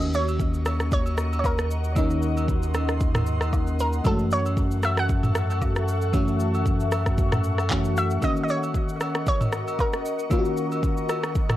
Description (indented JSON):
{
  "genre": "amapiano",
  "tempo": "115 BPM",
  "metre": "4/4",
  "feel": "swing 55% on 16ths",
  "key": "Eb dorian",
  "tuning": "A4 = 444 Hz",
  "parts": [
    { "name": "analog pluck", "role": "melody", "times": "0.0-10.2 s", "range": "A4 to Gb5", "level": "-29 LUFS", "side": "right 2 dB", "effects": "chorus, tape echo" },
    { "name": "FM electric piano with soft pad layer", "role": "accompaniment", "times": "0.0-11.6 s", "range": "Eb3 to Gb4", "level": "-28 LUFS", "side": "left 1 dB", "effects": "chorus, phaser" },
    { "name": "glassy FM pad", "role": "sustained chords", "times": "0.5-11.6 s", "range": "A4 to Db6", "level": "-32 LUFS", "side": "left 2 dB", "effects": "ensemble chorus, built-in reverb, sidechain pumping" },
    { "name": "punchy sub bass", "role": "bass", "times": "0.0-8.2 s", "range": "Eb2 to Gb2", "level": "-25 LUFS", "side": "equal", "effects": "none" },
    { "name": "afro-pop drum kit", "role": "drums", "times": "0.0-11.6 s", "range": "handclaps, kick drum, rim click, shaker, toms", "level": "-26 LUFS", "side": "equal", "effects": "none" },
    { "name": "agogo bells and woodblock", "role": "percussion", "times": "0.3-11.6 s", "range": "none", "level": "-37 LUFS", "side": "right 2 dB", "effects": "none" }
  ],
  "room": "little or no reverb",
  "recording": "dry, gritty hardware recording, cassette tape",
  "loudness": "-21 LUFS",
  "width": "side -14 dB against mid",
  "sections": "0.0-11.6 A section",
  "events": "none",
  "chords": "0.0 Ebm7; 4.0 Gbm7; 8.2 Ebm7"
}